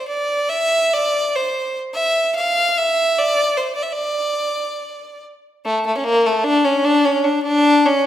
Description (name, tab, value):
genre	balkan folk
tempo	free time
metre	none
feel	none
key	D minor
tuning	A4 = 439 Hz
part	clear fiddle	solo	0.0-8.1 s	A3 to F5	-16 LUFS	equal	none
room	wet recital hall reverb, RT60 1.4 s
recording	none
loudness	-16 LUFS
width	side -11 dB against mid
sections	0.0-5.6 A section; 5.6-8.1 B section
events	speeding up 0.0-8.1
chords	none